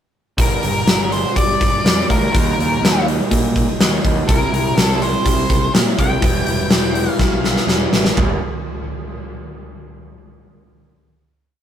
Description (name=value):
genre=quiet-loud alternative rock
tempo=123 BPM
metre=4/4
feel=straight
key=G minor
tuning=A4 = 441 Hz
part: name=octave-fuzz lead guitar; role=melody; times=0.4-7.7 s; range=Bb4 to G5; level=-21 LUFS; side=left 1 dB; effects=distortion
part: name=electric guitar through a small old amp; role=arpeggios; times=0.4-8.4 s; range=G2 to E4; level=-23 LUFS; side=right 1 dB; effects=none
part: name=growling picked electric bass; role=bass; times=0.4-8.4 s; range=E1 to Bb2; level=-22 LUFS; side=equal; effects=overdrive
part: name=huge arena drum kit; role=drums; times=0.4-8.3 s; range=hi-hat, kick drum, snare drum, toms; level=-17 LUFS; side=equal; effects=none
room=light reverb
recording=rough rehearsal-room recording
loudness=-14 LUFS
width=side -9 dB against mid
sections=0.4-8.2 verse; 8.2-10.1 final chord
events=drum fill 7.2-8.2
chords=0.4 Gm; 2.3 Eb; 4.3 C; 6.2 Em; 8.2 Gm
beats=| 0.38 0.87 1.36 1.85 | 2.34 2.83 3.31 3.80 | 4.29 4.77 5.26 5.74 | 6.23 6.71 7.20 7.69 | 8.17